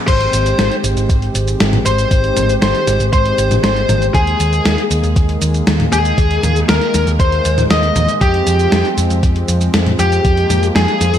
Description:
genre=synthwave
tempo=118 BPM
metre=4/4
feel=straight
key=Ab major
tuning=A4 = 440 Hz
part: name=warm analog pad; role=sustained chords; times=0.0-11.2 s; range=Eb3 to Ab4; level=-21 LUFS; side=right 1 dB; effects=chorus, sidechain pumping
part: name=biting lead guitar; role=melody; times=0.1-11.2 s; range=G4 to Eb5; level=-18 LUFS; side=left 2 dB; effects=overdrive, vintage 12-bit sampler grit, digital delay
part: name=soft synth bell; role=second line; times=0.1-11.2 s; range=G5 to Eb6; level=-23 LUFS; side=left 1 dB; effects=chorus, phaser, digital delay
part: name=hollow-body short-scale picked electric bass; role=bass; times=0.1-11.2 s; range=Ab1 to F2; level=-16 LUFS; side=equal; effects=none
part: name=electronic kick drum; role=drums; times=0.1-10.3 s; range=none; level=-14 LUFS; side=equal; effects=none
part: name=gated 80s digital drum machine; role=drums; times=0.1-11.2 s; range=crash cymbal, hi-hat, shaker, snare drum, toms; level=-18 LUFS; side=equal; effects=gated reverb, gated reverb snare
room=light reverb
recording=dark, warm production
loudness=-12 LUFS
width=side -10 dB against mid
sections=0.1-11.2 A section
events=none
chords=0.1 Abmaj7; 4.1 Ebsus4; 8.2 Fmadd9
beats=| 0.08 0.59 1.09 1.60 | 2.11 2.62 3.13 3.64 | 4.15 4.65 5.16 5.67 | 6.18 6.69 7.20 7.71 | 8.21 8.72 9.23 9.74 | 10.25 10.76

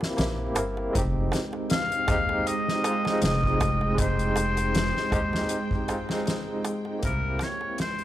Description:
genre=trip hop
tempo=79 BPM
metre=4/4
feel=swing 54% on 16ths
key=F minor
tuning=A4 = 440 Hz
part: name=barky tine electric piano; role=accompaniment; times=0.0-8.0 s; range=Ab3 to Bb4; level=-30 LUFS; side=equal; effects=fast tremolo, tape echo
part: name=soft-mallet drum kit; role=drums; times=0.0-8.0 s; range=hi-hat, kick drum, snare drum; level=-29 LUFS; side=equal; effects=none
part: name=darbuka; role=percussion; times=0.0-7.9 s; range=none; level=-35 LUFS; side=right 3 dB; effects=none
part: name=upright bass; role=bass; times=0.2-7.4 s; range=F1 to Eb2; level=-29 LUFS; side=equal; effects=none
part: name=string machine, cellos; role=sustained chords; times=1.0-8.0 s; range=Ab3 to G5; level=-33 LUFS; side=right 1 dB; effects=ensemble chorus
part: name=trumpet with straight mute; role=melody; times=1.7-8.0 s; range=Bb4 to F5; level=-28 LUFS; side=left 1 dB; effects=vintage 12-bit sampler grit, tape echo
room=small room ambience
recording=dry, gritty hardware recording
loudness=-24 LUFS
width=side -13 dB against mid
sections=0.0-8.0 A section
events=fade-out 5.0-8.0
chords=0.0 C7; 0.9 Fm9; 7.0 C7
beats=0.18 | 0.94 1.70 2.46 3.22 | 3.98 4.74 5.50 6.26 | 7.02 7.78

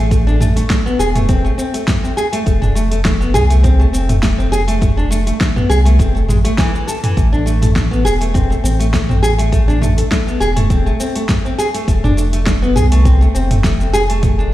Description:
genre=organic downtempo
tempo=102 BPM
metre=4/4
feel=swing 54% on 16ths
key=A harmonic minor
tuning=A4 = 441 Hz
part: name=nylon-string guitar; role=arpeggios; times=0.0-14.5 s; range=E3 to A4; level=-18 LUFS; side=left 1 dB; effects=vintage 12-bit sampler grit, tape echo
part: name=warm sub bass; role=bass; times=0.0-14.5 s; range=E1 to C2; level=-14 LUFS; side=equal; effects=tube saturation
part: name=deep house drum kit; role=drums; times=0.1-14.5 s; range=hi-hat, shaker, snare drum, toms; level=-20 LUFS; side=right 1 dB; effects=none
part: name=electronic kick drum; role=drums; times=0.1-14.4 s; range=none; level=-16 LUFS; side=equal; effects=none
room=light reverb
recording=played on a big sound system in a bare room, large studio reverb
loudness=-12 LUFS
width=side -14 dB against mid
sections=0.0-14.5 A section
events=none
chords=0.0 Am; 2.5 F; 7.2 Am; 11.9 F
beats=| 0.11 0.70 1.29 1.88 | 2.46 3.05 3.64 4.23 | 4.82 5.41 5.99 6.58 | 7.17 7.76 8.35 8.94 | 9.52 10.11 10.70 11.29 | 11.88 12.46 13.05 13.64 | 14.23

